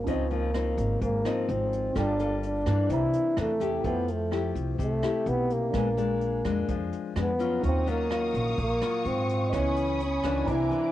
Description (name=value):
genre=bossa nova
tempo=127 BPM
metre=4/4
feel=straight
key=unclear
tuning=A4 = 440 Hz
part: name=breathy trombone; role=melody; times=0.0-10.9 s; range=A3 to E4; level=-28 LUFS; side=equal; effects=none
part: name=dark baby grand piano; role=accompaniment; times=0.0-10.9 s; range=Db4 to Db6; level=-39 LUFS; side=right 8 dB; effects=none
part: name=nylon-string guitar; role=accompaniment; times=0.0-10.9 s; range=Ab2 to A4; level=-32 LUFS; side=left 7 dB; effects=none
part: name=upright bass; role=bass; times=0.0-10.7 s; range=G1 to Ab2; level=-30 LUFS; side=right 1 dB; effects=transformer saturation
part: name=jazz brush drum kit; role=drums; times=0.1-10.8 s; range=hi-hat, kick drum, rim click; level=-38 LUFS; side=right 1 dB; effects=cassette tape
part: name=warm symphonic string section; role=sustained chords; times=7.6-10.9 s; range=C5 to Eb6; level=-35 LUFS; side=equal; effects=none
room=moderate studio reverb, RT60 0.5 s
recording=home recording on cassette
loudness=-25 LUFS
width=side -13 dB against mid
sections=0.1-10.9 A section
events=none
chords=0.1 Dbmaj9; 2.0 Gm9; 2.9 C9; 3.8 Fmaj9; 5.7 Bb7b9; 7.6 Ebm9; 9.5 Dbm9